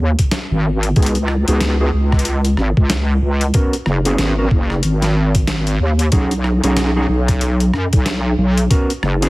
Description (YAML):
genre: glitch hop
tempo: 93 BPM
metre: 4/4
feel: swing 60% on 16ths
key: G# minor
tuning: A4 = 440 Hz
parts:
  - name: wobble bass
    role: bass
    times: 0.0-9.3 s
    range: F#1 to F#2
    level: -15 LUFS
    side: equal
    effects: chorus
  - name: boom bap sampler-style drum kit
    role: drums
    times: 0.2-9.3 s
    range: hi-hat, rim click, snare drum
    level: -24 LUFS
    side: left 1 dB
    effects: small room ambience
  - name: electronic kick drum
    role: drums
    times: 0.2-8.9 s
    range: none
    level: -16 LUFS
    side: equal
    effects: small room ambience
  - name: mellow electric guitar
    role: stabs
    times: 1.0-9.3 s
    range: B3 to A#4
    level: -22 LUFS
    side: right 1 dB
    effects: vintage 12-bit sampler grit, sidechain pumping, low-pass filter, tape echo
room: little or no reverb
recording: heavily compressed radio sound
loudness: -14 LUFS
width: side -20 dB against mid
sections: 0.0-9.3 A section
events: filter sweep on clean electric guitar 0.0-9.3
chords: 0.0 G#5; 1.0 C#7sus4; 3.5 G#m11; 6.1 B6; 8.7 G#m11 (rootless)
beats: 0.32 | 0.96 1.61 2.25 2.90 | 3.54 4.19 4.83 5.48 | 6.12 6.77 7.42 8.06 | 8.71